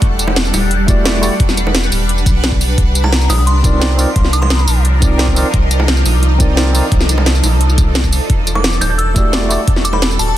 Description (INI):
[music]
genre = liquid drum and bass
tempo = 174 BPM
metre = 4/4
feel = straight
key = unclear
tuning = A4 = 441 Hz
[part]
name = shimmering ambient pad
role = sustained chords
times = 0.0-10.4 s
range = F3 to F#5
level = -20 LUFS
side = equal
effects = chorus, built-in reverb, phaser, sidechain pumping
[part]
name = warm sub bass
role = bass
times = 0.0-10.4 s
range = D1 to C2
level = -14 LUFS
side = equal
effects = tube saturation
[part]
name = drum and bass drum kit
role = drums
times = 0.0-10.3 s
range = hi-hat, snare drum, tambourine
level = -18 LUFS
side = equal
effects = none
[part]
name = electronic kick drum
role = drums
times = 0.0-9.7 s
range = none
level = -14 LUFS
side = equal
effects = none
[part]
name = bongos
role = percussion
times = 0.3-10.0 s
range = none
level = -24 LUFS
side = right 3 dB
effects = none
[part]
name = tine electric piano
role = accompaniment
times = 0.9-1.3, 3.6-6.9, 9.1-9.6 s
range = A3 to D5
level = -21 LUFS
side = right 1 dB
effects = medium tremolo, ping-pong delay
[part]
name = glassy synth bell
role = melody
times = 3.0-4.7, 8.6-10.3 s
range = A5 to G6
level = -21 LUFS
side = left 1 dB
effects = chorus, vintage 12-bit sampler grit, ping-pong delay
[sound]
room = little or no reverb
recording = dense, heavily limited modern master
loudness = -11 LUFS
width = side -13 dB against mid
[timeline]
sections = 0.0-10.4 A section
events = none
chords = 0.0 Em11; 2.8 Cm11; 8.3 Em11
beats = | 0.02 0.36 0.71 1.05 | 1.40 1.74 2.09 2.43 | 2.78 3.12 3.47 3.81 | 4.16 4.50 4.85 5.19 | 5.54 5.88 6.23 6.57 | 6.92 7.26 7.61 7.95 | 8.30 8.64 8.99 9.33 | 9.68 10.02 10.37